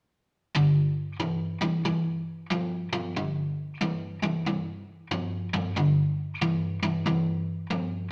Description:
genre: rock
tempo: 92 BPM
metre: 4/4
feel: swing 64% on 8ths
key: unclear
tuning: A4 = 440 Hz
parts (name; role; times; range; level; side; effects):
- overdriven electric guitar; riff; 0.6-8.1 s; G2 to F3; -28 LUFS; equal; none
room: wet stone room reverb, RT60 1.3 s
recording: band playing live in one room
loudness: -28 LUFS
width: mono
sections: 0.5-8.1 A section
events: none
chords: 0.5 G5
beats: | 0.55 1.20 1.85 2.50 | 3.15 3.81 4.46 5.11 | 5.75 6.40 7.05 7.70

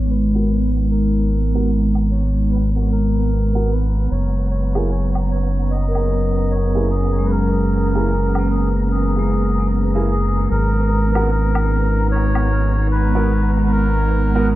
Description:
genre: ambient dub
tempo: 75 BPM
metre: 4/4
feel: swing 60% on 16ths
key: G# minor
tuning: A4 = 440 Hz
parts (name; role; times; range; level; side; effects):
- melodica; melody; 0.0-14.5 s; G#4 to D#5; -27 LUFS; equal; dub echo
- warbly tape-like pad; sustained chords; 0.0-14.6 s; F#3 to A#5; -23 LUFS; right 1 dB; chorus, built-in reverb
- vibraphone with hard mallets; arpeggios; 0.0-14.6 s; G#3 to A#4; -26 LUFS; left 1 dB; low-pass filter, dub echo
- round analog bass; bass; 0.0-14.6 s; F#1 to G#1; -18 LUFS; equal; none
- wind-like tuned noise texture; texture; 0.0-14.6 s; B3 to A#5; -29 LUFS; right 5 dB; built-in reverb
- warm upright piano; stabs; 0.3-14.5 s; A#3 to A#4; -29 LUFS; right 2 dB; low-pass filter, dub echo
- woodblock; drums; 1.9-12.5 s; none; -30 LUFS; left 2 dB; dub echo
room: light reverb, small room ambience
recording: low-pass filter, nothing above 7.6 kHz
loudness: -16 LUFS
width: side -15 dB against mid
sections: 0.0-14.6 A section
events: filter sweep on upright piano 0.0-14.6; filter sweep on vibraphone 0.0-14.6; filter sweep 0.0-14.6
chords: 0.0 G#madd9; 4.1 F#add9; 10.5 G#madd9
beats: 0.11 | 0.91 1.71 2.51 3.31 | 4.11 4.91 5.71 6.51 | 7.31 8.11 8.91 9.71 | 10.51 11.31 12.11 12.91 | 13.71 14.51

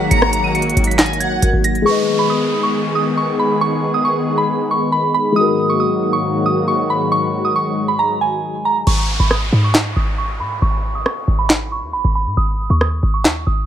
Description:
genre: hip hop, trap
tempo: 137 BPM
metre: 4/4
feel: half-time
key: G# minor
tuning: A4 = 442 Hz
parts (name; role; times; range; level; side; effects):
- soft synth bell; melody; 0.0-13.7 s; G#5 to D#7; -19 LUFS; right 2 dB; chorus, tremolo, low-pass filter, ping-pong delay
- warm studio violin section; second line; 0.0-1.4 s; F#5 to A#5; -23 LUFS; left 2 dB; ping-pong delay
- dark concert grand piano; accompaniment; 0.0-8.9 s; G#3 to D#5; -22 LUFS; left 5 dB; low-pass filter
- sweeping resonant pad; sustained chords; 0.0-8.9 s; G#2 to G#4; -20 LUFS; left 1 dB; chorus
- short 808-style bass; bass; 0.0-1.8, 8.9-13.7 s; G#1 to G#2; -17 LUFS; equal; none
- trap drum kit; drums; 0.1-1.9, 8.9-13.4 s; crash cymbal, handclaps, hi-hat, rim click, snare drum; -17 LUFS; equal; none
- downlifter; sound effects; 1.9-5.4, 8.9-12.4 s; none; -28 LUFS; right 1 dB; none
room: little or no reverb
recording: none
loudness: -14 LUFS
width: side -10 dB against mid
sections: 0.0-1.9 A section; 1.9-8.9 B section; 8.9-13.7 C section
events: hi-hats muted 8.9-13.7; filter sweep 8.9-13.7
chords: 0.0 D#m/G#; 1.9 G#m; 5.4 D#m/G#; 8.9 G#5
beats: | 0.11 0.55 0.99 1.42 | 1.86 2.30 2.74 3.17 | 3.61 4.05 4.49 4.93 | 5.37 5.80 6.24 6.68 | 7.12 7.55 7.99 8.43 | 8.87 9.31 9.74 10.18 | 10.62 11.06 11.50 11.94 | 12.37 12.81 13.25

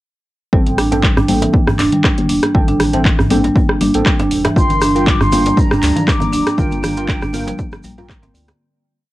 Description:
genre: afro house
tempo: 119 BPM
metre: 4/4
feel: swing 54% on 16ths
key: G dorian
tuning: A4 = 440 Hz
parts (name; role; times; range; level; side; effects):
- marimba with medium hard mallets; arpeggios; 0.5-8.5 s; D3 to D4; -18 LUFS; right 1 dB; sidechain pumping, cassette tape, analog delay
- deep mellow chord stab; stabs; 0.5-8.6 s; C4 to G5; -23 LUFS; right 1 dB; chorus, sidechain pumping, cassette tape, analog delay
- round analog bass; bass; 0.5-8.5 s; D1 to D2; -22 LUFS; equal; sidechain pumping
- electronic kick drum; drums; 0.5-8.2 s; none; -15 LUFS; equal; overdrive, cassette tape
- afro-pop drum kit; drums; 0.7-8.6 s; handclaps, hi-hat, rim click, toms; -20 LUFS; equal; cassette tape
- djembe; percussion; 0.7-8.6 s; none; -23 LUFS; right 1 dB; none
- congas; percussion; 1.3-8.6 s; none; -22 LUFS; left 3 dB; none
- mellow concert flute; melody; 4.6-8.1 s; G5 to D6; -21 LUFS; left 2 dB; cassette tape, analog delay
- dark analog pad; sustained chords; 5.3-8.6 s; G3 to Bb5; -26 LUFS; equal; chorus, sidechain pumping, cassette tape
- tube shaker; percussion; 4.6-8.6 s; none; -34 LUFS; right 3 dB; none
room: light reverb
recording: home recording on cassette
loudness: -12 LUFS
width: side -16 dB against mid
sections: 0.5-8.6 drop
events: drop 0.5-8.6; fade-out 5.9-8.6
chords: 0.5 Am7; 4.6 Gm7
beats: | 0.53 1.03 1.54 2.04 | 2.55 3.05 3.56 4.06 | 4.56 5.07 5.57 6.08 | 6.58 7.08 7.59 8.09

